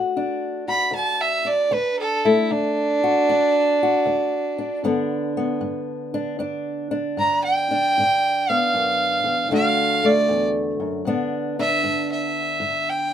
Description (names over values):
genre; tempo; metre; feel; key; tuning
acoustic country blues, solo or duo; 77 BPM; 4/4; swing 67% on 8ths; G major; A4 = 439 Hz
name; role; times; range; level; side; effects
fingerpicked old ladder-braced acoustic guitar; accompaniment; 0.0-13.1 s; D2 to F#4; -24 LUFS; left 2 dB; none
rich fiddle; melody; 0.7-13.1 s; D4 to B5; -19 LUFS; right 2 dB; none
room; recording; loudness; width
moderate small room reverb, RT60 0.5 s; minimal, uncompressed stereo recording; -19 LUFS; side -9 dB against mid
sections
0.0-11.1 A section; 11.1-13.1 B section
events
fiddle solo 11.1-13.1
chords
0.0 D; 4.8 G; 9.5 D; 11.1 G